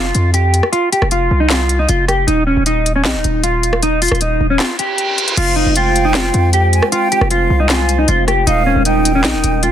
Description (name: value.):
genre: hip hop, trap.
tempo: 155 BPM.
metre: 4/4.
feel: half-time.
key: F minor.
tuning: A4 = 439 Hz.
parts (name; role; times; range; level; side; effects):
mellow electric guitar; melody; 0.0-9.7 s; Db4 to G4; -16 LUFS; equal; analog chorus, low-pass filter.
hard-hitting 808-style bass; bass; 0.0-9.7 s; Eb1 to F2; -16 LUFS; equal; none.
trap drum kit; drums; 0.1-9.7 s; crash cymbal, handclaps, hi-hat, rim click, snare drum; -19 LUFS; left 1 dB; none.
reverse cymbal; sound effects; 4.8-5.4 s; none; -20 LUFS; right 4 dB; none.
breathy concert flute; second line; 5.4-9.7 s; F5 to Ab5; -21 LUFS; right 5 dB; tape echo.
glass harmonica; sustained chords; 5.5-9.7 s; Ab3 to C5; -22 LUFS; left 2 dB; none.
room: little or no reverb.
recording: dense, heavily limited modern master.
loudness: -12 LUFS.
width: side -10 dB against mid.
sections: 0.0-5.4 A section; 5.4-9.7 B section.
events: kick muted 4.6-5.4; reverse cymbal 4.8-5.4.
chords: 0.0 Fsus2; 2.3 N.C.; 5.4 Fmadd9; 8.5 Eb7.